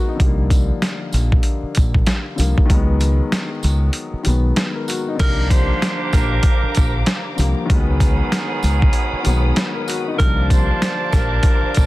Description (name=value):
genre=hip hop, boom-bap hip-hop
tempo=96 BPM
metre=4/4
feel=swing 58% on 16ths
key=unclear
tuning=A4 = 440 Hz
part: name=warm upright piano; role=accompaniment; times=0.0-11.9 s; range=D3 to Bb4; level=-24 LUFS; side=left 4 dB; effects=cassette tape, high-pass filter, low-pass filter
part: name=deep dub fingered electric bass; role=bass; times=0.2-11.9 s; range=Bb1 to Db2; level=-18 LUFS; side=equal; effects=none
part: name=boom bap sampler-style drum kit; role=drums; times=0.2-11.9 s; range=crash cymbal, hi-hat, kick drum, snare drum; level=-17 LUFS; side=equal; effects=none
part: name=tambourine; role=percussion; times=0.5-11.9 s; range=none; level=-35 LUFS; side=right 3 dB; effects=none
part: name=breathy tenor saxophone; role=melody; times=5.2-11.9 s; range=Bb4 to C5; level=-26 LUFS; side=equal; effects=high-pass filter, low-pass filter, ping-pong delay
part: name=warm studio string section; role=sustained chords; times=5.2-11.9 s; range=Bb4 to Eb6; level=-29 LUFS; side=equal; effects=high-pass filter, low-pass filter
part: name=warm horn section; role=stabs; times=5.2-11.9 s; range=D3 to A5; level=-26 LUFS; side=right 5 dB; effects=high-pass filter, low-pass filter, ping-pong delay
room=small room ambience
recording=dense, heavily limited modern master, vinyl crackle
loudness=-15 LUFS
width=side -18 dB against mid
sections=0.0-5.2 A section; 5.2-11.9 B section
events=break 3.9-5.2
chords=0.2 C9sus4; 2.7 Db9sus4; 5.2 C9sus4; 7.7 Db9sus4; 10.2 C9sus4